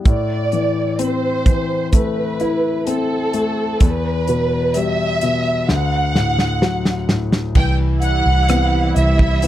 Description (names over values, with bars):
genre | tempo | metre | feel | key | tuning
pop ballad | 64 BPM | 4/4 | straight | unclear | A4 = 438 Hz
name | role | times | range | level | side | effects
warm concert grand piano | accompaniment | 0.0-9.5 s | D2 to E4 | -20 LUFS | left 3 dB | none
dark studio violin section | melody | 0.1-9.5 s | A4 to G5 | -21 LUFS | right 2 dB | slapback echo
modern studio drum kit | drums | 0.1-9.5 s | crash cymbal, hi-hat, kick drum, rim click, snare drum | -16 LUFS | right 1 dB | none
warm studio string section | sustained chords | 7.6-9.5 s | E3 to E4 | -24 LUFS | right 3 dB | none
vintage muted fingered electric bass | bass | 7.6-9.5 s | C2 | -16 LUFS | right 1 dB | none
room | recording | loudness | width
little or no reverb | dry, close 1970s-style studio recording | -15 LUFS | side -13 dB against mid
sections
0.0-7.6 A section; 7.6-9.5 B section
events
drum fill 5.7-7.6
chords
0.1 Am; 3.8 Em; 5.7 D; 7.6 Cmaj7